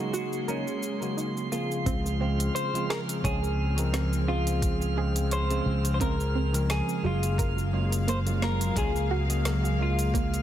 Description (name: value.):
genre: sunset chillout.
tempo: 87 BPM.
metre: 4/4.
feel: swing 55% on 16ths.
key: Db major.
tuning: A4 = 440 Hz.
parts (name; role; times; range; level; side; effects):
semi-hollow electric guitar; melody; 0.0-10.4 s; Db4 to C5; -34 LUFS; left 1 dB; wide subtle chorus, digital delay.
bell-like tine electric piano; accompaniment; 0.0-10.4 s; Db3 to Bb4; -33 LUFS; equal; auto-pan, vintage 12-bit sampler grit, digital delay.
dark chamber string section; sustained chords; 0.0-10.4 s; Db3 to F5; -35 LUFS; equal; none.
drifting glass-harmonics texture; texture; 0.0-10.4 s; C6 to F6; -40 LUFS; right 2 dB; chorus, built-in reverb.
soft round pluck; arpeggios; 0.1-10.4 s; Gb3 to Db5; -37 LUFS; right 5 dB; chorus, digital delay.
deep house drum kit; drums; 0.1-10.4 s; cabasa, hi-hat, snare drum; -35 LUFS; equal; none.
sustaining fretless electric bass; bass; 1.9-10.4 s; Gb1 to Db2; -27 LUFS; equal; none.
electronic kick drum; drums; 1.9-10.3 s; none; -30 LUFS; equal; none.
room: light reverb, digital ambience.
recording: dense, heavily limited modern master.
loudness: -25 LUFS.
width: side -11 dB against mid.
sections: 0.0-1.9 A section; 1.9-10.4 B section.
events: filter sweep on tine electric piano 0.0-1.9; filter sweep on synth arpeggio sound 0.0-1.9.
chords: 0.0 Ab9sus4; 1.9 Dbmaj7; 7.0 Gbmaj9.